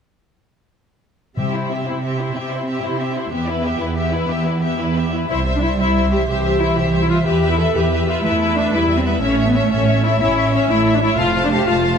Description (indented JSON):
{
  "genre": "cinematic",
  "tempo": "122 BPM (dotted quarters)",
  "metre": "12/8",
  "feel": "straight",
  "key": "C major",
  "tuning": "A4 = 440 Hz",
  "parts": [
    { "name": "warm symphonic violin section", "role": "melody", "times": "1.4-12.0 s", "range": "B4 to A5", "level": "-27 LUFS", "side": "left 3 dB", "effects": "none" },
    { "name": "warm symphonic violin section", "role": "second line", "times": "1.4-12.0 s", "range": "E4 to F5", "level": "-24 LUFS", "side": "left 2 dB", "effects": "none" },
    { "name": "warm symphonic viola section", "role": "accompaniment", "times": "1.4-12.0 s", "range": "B3 to A4", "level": "-20 LUFS", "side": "left 3 dB", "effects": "none" },
    { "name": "warm symphonic cello section", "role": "bass", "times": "1.4-12.0 s", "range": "E2 to C#4", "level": "-22 LUFS", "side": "right 3 dB", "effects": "none" },
    { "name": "timpani", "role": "percussion", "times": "1.4-1.8 s", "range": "C3", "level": "-26 LUFS", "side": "left 5 dB", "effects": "none" },
    { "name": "dark symphonic double bass section", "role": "bass", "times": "5.3-12.0 s", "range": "F1 to E2", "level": "-21 LUFS", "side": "right 3 dB", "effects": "none" }
  ],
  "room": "moderate scoring stage reverb, RT60 1.8 s",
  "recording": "none",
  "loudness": "-16 LUFS",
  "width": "side -7 dB against mid",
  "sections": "1.4-5.3 A section; 5.3-12.0 B section",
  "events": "none",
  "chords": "1.4 C; 3.3 Em; 5.3 C; 7.3 Em; 9.2 A; 11.2 F"
}